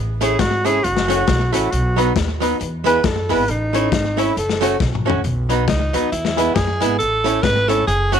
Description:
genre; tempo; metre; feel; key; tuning
ska; 136 BPM; 4/4; swing 58% on 8ths; B mixolydian; A4 = 437 Hz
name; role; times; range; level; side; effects
upright bass; bass; 0.0-8.2 s; F#1 to F#2; -22 LUFS; equal; none
breathy tenor saxophone; melody; 0.2-4.8 s; D#4 to B4; -20 LUFS; right 1 dB; none
archtop guitar, miked and amplified; accompaniment; 0.2-8.2 s; F#3 to F#4; -23 LUFS; right 14 dB; none
clear upright piano; stabs; 0.2-8.2 s; D#4 to C#5; -24 LUFS; left 11 dB; none
crunchy breakbeat drum kit; drums; 0.2-8.2 s; hi-hat, kick drum, snare drum, toms; -22 LUFS; left 5 dB; slapback echo
bright alto saxophone; melody; 5.7-8.2 s; D#4 to B4; -19 LUFS; right 1 dB; none
room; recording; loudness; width
small room ambience; 1960s-style stereo with parts hard left and right; -16 LUFS; side -8 dB against mid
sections
0.0-5.2 A section; 5.2-8.2 A section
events
tenor saxophone solo 0.0-5.2; drum fill 4.8-5.2; alto saxophone solo 5.2-8.2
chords
0.0 A; 0.8 F#m; 1.7 B; 2.6 E; 3.5 A; 4.4 F#m; 5.2 B; 6.1 E; 7.0 A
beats
0.40 0.84 1.28 | 1.72 2.16 2.60 3.04 | 3.48 3.92 4.36 4.80 | 5.24 5.68 6.12 6.56 | 7.00 7.44 7.88

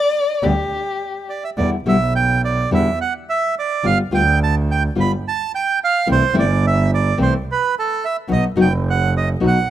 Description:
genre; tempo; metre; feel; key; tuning
tango; 107 BPM; 4/4; rubato; E minor; A4 = 439 Hz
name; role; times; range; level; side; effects
warm violin; second line; 0.0-1.3 s; G4 to D5; -19 LUFS; left 2 dB; none
nylon-string guitar; accompaniment; 0.4-9.6 s; B2 to G4; -18 LUFS; left 3 dB; none
rich double bass; bass; 0.4-9.7 s; F#1 to E2; -19 LUFS; right 2 dB; none
bandoneon; melody; 1.3-9.7 s; A4 to B5; -19 LUFS; right 5 dB; none
room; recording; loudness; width
light reverb; rough home demo mix; -16 LUFS; side -12 dB against mid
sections
0.0-1.6 A section; 1.6-9.7 B section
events
violin solo 0.0-1.6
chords
0.0 G; 1.6 Em7; 3.8 G7; 6.1 C6; 8.3 B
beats
0.42 1.00 | 1.57 2.14 2.71 3.28 | 3.84 4.40 4.96 5.52 | 6.07 6.63 7.18 7.74 | 8.29 8.86 9.42

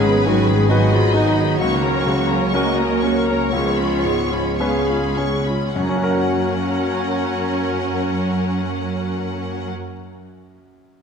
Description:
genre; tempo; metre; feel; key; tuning
classical, romantic movement for piano and orchestra; 49-70 BPM; 4/4; rubato; F# major; A4 = 440 Hz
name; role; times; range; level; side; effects
bright grand piano; melody; 0.0-11.0 s; C#2 to F#5; -23 LUFS; left 2 dB; none
warm symphonic violin section; melody; 0.0-9.7 s; F#5 to C#6; -28 LUFS; left 6 dB; none
clear clarinet; second line; 0.0-9.7 s; D#4 to A#4; -26 LUFS; left 3 dB; none
warm symphonic violin section; second line; 0.0-9.7 s; A#4 to E#5; -29 LUFS; left 2 dB; none
warm symphonic viola section; accompaniment; 0.0-9.7 s; G#3 to A#4; -25 LUFS; right 3 dB; none
warm French horn section; sustained chords; 0.0-9.7 s; F#3 to C#4; -28 LUFS; left 3 dB; none
rich studio double bass section; bass; 0.0-9.7 s; G#1 to F#2; -24 LUFS; right 2 dB; none
rich symphonic cello section; bass; 0.0-9.7 s; D#3 to A#3; -26 LUFS; right 3 dB; none
room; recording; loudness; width
wet scoring stage reverb, RT60 2.0 s; none; -17 LUFS; side -6 dB against mid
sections
0.0-5.8 A section; 5.8-10.2 B section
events
slowing down 0.0-5.8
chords
0.0 G#m7; 1.6 F#/C#; 3.5 C#7; 5.8 F#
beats
0.71 | 1.60 2.54 3.53 4.59 | 5.77 6.87 7.96 9.05

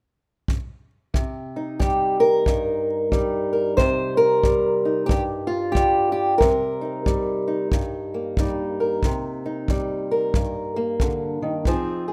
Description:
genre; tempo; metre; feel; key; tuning
acoustic country blues, solo or duo; 91 BPM; 4/4; swing 62% on 8ths; C minor; A4 = 440 Hz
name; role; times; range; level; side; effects
kick drum; drums; 0.5-11.8 s; none; -26 LUFS; equal; none
fingerpicked old ladder-braced acoustic guitar; melody; 1.1-12.1 s; G2 to C5; -23 LUFS; equal; none
room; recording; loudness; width
light reverb, studio ambience; rough home demo mix; -22 LUFS; mono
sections
0.0-1.1 A section; 1.1-12.1 B section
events
none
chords
0.0 N.C.; 1.1 Cm7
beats
0.48 | 1.14 1.80 2.46 3.12 | 3.78 4.43 5.09 5.75 | 6.41 7.06 7.72 8.37 | 9.03 9.68 10.34 11.00 | 11.65

